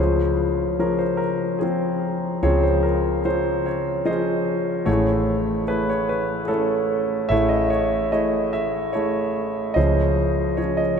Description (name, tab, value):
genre	folk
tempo	73 BPM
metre	3/4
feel	straight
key	unclear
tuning	A4 = 440 Hz
part	warm concert grand piano	melody	0.0-11.0 s	A1 to E5	-20 LUFS	equal	none
part	vintage muted fingered electric bass	bass	0.0-11.0 s	A1 to Db2	-26 LUFS	right 1 dB	none
room	wet cathedral reverb, RT60 6.1 s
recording	in a vast, echoing space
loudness	-19 LUFS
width	side -6 dB against mid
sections	0.0-11.0 A section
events	none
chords	0.0 Dbmaj7; 4.9 Amaj7; 9.8 Dbmaj7